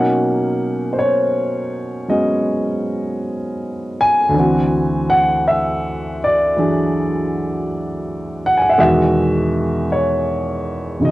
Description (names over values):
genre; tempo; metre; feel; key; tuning
jazz ballad; 54 BPM; 4/4; swing 68% on 8ths; unclear; A4 = 440 Hz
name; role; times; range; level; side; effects
warm grand piano; solo; 0.0-11.1 s; D2 to G#5; -15 LUFS; equal; cassette tape
room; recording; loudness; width
moderate booth ambience, RT60 0.2 s; home recording on cassette; -15 LUFS; side -17 dB against mid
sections
0.0-11.1 A section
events
none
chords
0.0 Bmaj9; 4.3 D9; 8.8 Emaj7